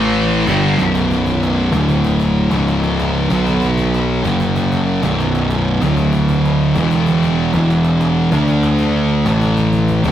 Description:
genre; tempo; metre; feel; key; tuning
stoner and doom metal; 96 BPM; 4/4; straight; B minor; A4 = 439 Hz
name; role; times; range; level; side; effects
heavy high-gain guitar; riff; 0.0-0.8 s; G2 to A3; -18 LUFS; equal; distortion
thick fuzz guitar; riff; 0.0-10.1 s; B1 to D4; -17 LUFS; left 4 dB; distortion
thick fuzz guitar; riff; 0.0-10.1 s; B1 to D4; -19 LUFS; right 6 dB; distortion
fuzz picked electric bass; bass; 0.0-10.1 s; B0 to D2; -18 LUFS; equal; overdrive
cajon; drums; 0.0-10.1 s; none; -26 LUFS; right 1 dB; none
room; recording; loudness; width
light reverb; rough rehearsal-room recording, tube saturation; -13 LUFS; side -11 dB against mid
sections
0.8-10.1 A section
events
break 0.0-0.8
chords
0.5 G5; 0.8 B5; 1.7 D5; 2.5 C#5; 3.3 B5; 4.2 F#5; 5.0 B5; 5.8 D5; 6.8 E5; 8.3 D5; 9.3 A5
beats
0.17 | 0.80 1.42 2.05 2.68 | 3.31 3.93 4.56 5.19 | 5.82 6.44 7.07 7.70 | 8.32 8.95 9.57

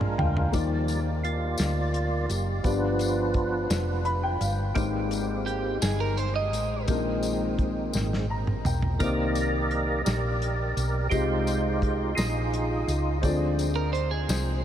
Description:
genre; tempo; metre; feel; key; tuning
slow gospel; 57 BPM (dotted quarters); 6/8; straight; Eb major; A4 = 440 Hz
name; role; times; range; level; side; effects
dark baby grand piano; accompaniment; 0.0-14.6 s; G2 to B5; -31 LUFS; left 4 dB; wide subtle chorus
percussive tonewheel organ; sustained chords; 0.0-14.6 s; Eb3 to Eb5; -30 LUFS; right 2 dB; chorus vibrato, slow rotary speaker
hollow-body short-scale fingered electric bass; bass; 0.0-14.6 s; F1 to Eb2; -28 LUFS; equal; none
warm soul drum kit; drums; 0.0-14.5 s; hi-hat, kick drum, snare drum, toms; -31 LUFS; equal; none
tambourine; percussion; 0.5-14.6 s; none; -42 LUFS; left 6 dB; none
clean electric guitar; second line; 5.5-6.9, 13.8-14.6 s; G4 to Eb5; -33 LUFS; right 5 dB; analog chorus
room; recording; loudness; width
moderate huge ambient reverb, RT60 9.0 s; dreamy mix soaked in reverb; -24 LUFS; side -10 dB against mid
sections
0.5-14.6 A section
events
drum fill 0.0-0.5, 7.9-9.0; grand piano fill 0.0-0.5, 3.7-4.8, 7.9-9.0; tonewheel organ solo 0.5-14.6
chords
0.0 Bb7; 0.5 Ebmaj7; 2.6 G7; 4.8 Abmaj7; 6.9 Bb7sus4; 9.0 Cm7; 11.1 Fm9/C; 13.2 Dm7b5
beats
| 0.53 1.59 | 2.65 3.70 | 4.76 5.82 | 6.88 7.94 | 9.00 10.06 | 11.12 12.18 | 13.24 14.29

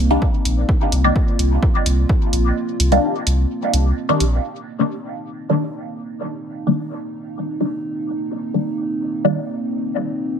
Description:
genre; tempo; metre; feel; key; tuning
dub techno; 128 BPM; 4/4; straight; C minor; A4 = 439 Hz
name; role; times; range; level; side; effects
dark analog pad; sustained chords; 0.0-10.4 s; Bb3 to F4; -25 LUFS; right 1 dB; chorus, sidechain pumping
warm sub bass; bass; 0.0-4.4 s; Bb1 to C2; -17 LUFS; equal; sidechain pumping
filtered dub chord stab; stabs; 0.1-9.4 s; Eb3 to D4; -20 LUFS; left 1 dB; phaser, sidechain pumping, dub echo
electronic kick drum; drums; 0.2-2.2 s; none; -18 LUFS; equal; overdrive, studio reverb
electronic hi-hat; drums; 0.5-4.3 s; none; -24 LUFS; right 1 dB; overdrive, studio reverb
room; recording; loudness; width
light reverb; echo-heavy mix; -17 LUFS; side -7 dB against mid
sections
0.0-4.4 A section; 4.4-10.4 B section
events
kick drops out 2.6-4.4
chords
0.0 Cm7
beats
0.22 | 0.69 1.16 1.63 2.10 | 2.56 3.03 3.50 3.97 | 4.44 4.91 5.38 5.84 | 6.31 6.78 7.25 7.72 | 8.19 8.66 9.13 9.60 | 10.06

